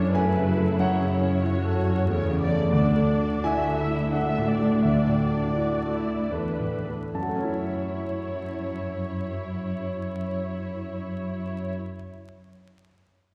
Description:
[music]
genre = cinematic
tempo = 72-94 BPM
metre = 3/4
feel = rubato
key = F# minor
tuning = A4 = 440 Hz
[part]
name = clear concert grand piano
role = accompaniment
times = 0.0-12.1 s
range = D2 to A5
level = -29 LUFS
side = equal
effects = none
[part]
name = rich studio viola section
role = accompaniment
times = 0.0-11.7 s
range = C#3 to E5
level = -33 LUFS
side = equal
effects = none
[part]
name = concert harp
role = arpeggios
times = 0.0-2.4 s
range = none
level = barely audible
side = none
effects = none
[part]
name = warm studio cello section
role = bass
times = 0.0-11.7 s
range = D2 to F#2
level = -29 LUFS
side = equal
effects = none
[sound]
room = wet concert hall reverb, RT60 2.0 s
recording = heard from further back in the room, vinyl crackle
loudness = -26 LUFS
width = mono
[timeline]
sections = 0.0-7.1 A section; 7.1-11.9 B section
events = slowing down 1.8-7.1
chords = 0.0 F#m7; 2.7 Dsus2; 7.1 F#m7

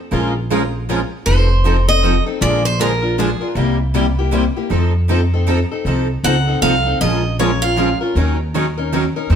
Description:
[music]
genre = acoustic string swing (jazz manouche)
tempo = 157 BPM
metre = 3/4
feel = swing 61% on 8ths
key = Bb minor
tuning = A4 = 440 Hz
[part]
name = picked steel-string acoustic guitar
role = accompaniment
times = 0.1-9.4 s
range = C3 to Bb4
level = -20 LUFS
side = left 5 dB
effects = none
[part]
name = picked steel-string acoustic guitar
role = accompaniment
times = 0.1-9.4 s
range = C3 to Bb4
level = -22 LUFS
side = right 6 dB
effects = none
[part]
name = upright bass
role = bass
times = 0.1-9.4 s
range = F1 to F2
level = -18 LUFS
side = equal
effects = none
[part]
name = picked steel-string acoustic guitar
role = melody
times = 1.3-3.5, 6.2-8.0 s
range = Ab4 to Gb5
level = -18 LUFS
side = right 2 dB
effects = none
[sound]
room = moderate stone room reverb, RT60 1.1 s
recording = band playing live in one room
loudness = -14 LUFS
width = side -8 dB against mid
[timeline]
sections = 0.0-1.3 A section; 1.3-9.4 B section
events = none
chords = 0.1 Bbm7; 1.3 F7; 2.4 Bb7; 3.6 C7; 4.7 F7; 7.0 Bbm7; 8.1 Ebm7

